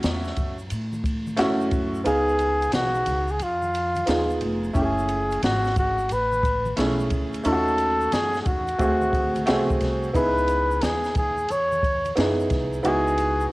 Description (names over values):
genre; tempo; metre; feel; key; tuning
hip hop, jazz-hop; 89 BPM; 4/4; swing 66% on 16ths; C# minor; A4 = 442 Hz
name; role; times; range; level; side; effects
warm grand piano; accompaniment; 0.0-13.5 s; A3 to E#5; -25 LUFS; right 1 dB; cassette tape
upright bass; bass; 0.0-13.5 s; E#1 to A2; -29 LUFS; equal; none
open jazz drum kit; drums; 0.0-13.4 s; hi-hat, kick drum, ride cymbal, snare drum; -28 LUFS; equal; vintage 12-bit sampler grit, cassette tape
congas and tube shaker; percussion; 0.0-13.5 s; none; -39 LUFS; left 2 dB; none
breathy flugelhorn; melody; 2.1-13.5 s; E#4 to C#5; -24 LUFS; equal; cassette tape
room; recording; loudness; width
light reverb, small room ambience; home recording on cassette; -21 LUFS; side -21 dB against mid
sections
0.0-13.5 A section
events
kick muted 2.1-4.8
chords
0.0 Dmaj7 (rootless); 2.1 C#7; 4.8 F#m9; 7.4 D#m7b5; 8.8 D7#11; 10.1 C#m9